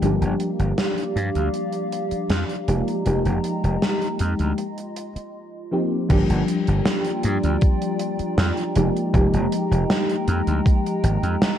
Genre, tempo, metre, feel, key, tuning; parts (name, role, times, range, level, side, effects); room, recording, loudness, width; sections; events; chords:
vaporwave; 79 BPM; 4/4; straight; A4 = 440 Hz
mellow FM electric piano; accompaniment; 0.0-11.6 s; F3 to G4; -24 LUFS; left 1 dB; ensemble chorus, analog delay
warbly tape-like pad; sustained chords; 0.0-11.6 s; Ab3 to C6; -30 LUFS; equal; chorus, built-in reverb, vintage 12-bit sampler grit
gritty slap bass; bass; 0.0-11.3 s; F1 to G2; -21 LUFS; equal; overdrive
gated 80s drum kit; drums; 0.0-11.6 s; crash cymbal, hi-hat, snare drum; -26 LUFS; right 1 dB
electronic kick drum; drums; 6.1-10.8 s; -18 LUFS; equal; overdrive
light reverb, studio reverb; dark, warm production, cassette tape; -19 LUFS; side -10 dB against mid
0.0-6.1 A section; 6.1-11.6 B section
0.0 Gm7; 2.7 Fm11; 4.6 Eb69; 6.1 Gm7; 8.8 Fm11